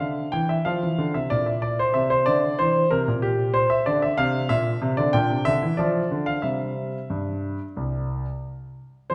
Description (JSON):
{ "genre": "classical-period piano sonatina", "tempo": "93 BPM", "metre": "4/4", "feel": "rubato", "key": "unclear", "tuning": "A4 = 440 Hz", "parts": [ { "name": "clear grand piano", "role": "solo", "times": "0.0-9.1 s", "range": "C2 to G5", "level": "-24 LUFS", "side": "equal", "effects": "none" } ], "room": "wet recital hall reverb, RT60 1.7 s", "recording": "heard from further back in the room", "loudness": "-23 LUFS", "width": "mono", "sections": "0.0-9.1 A section", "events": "none", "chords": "0.0 F5; 1.3 C7/Bb; 3.9 Bbadd9; 5.1 Bb6 (rootless); 6.4 C" }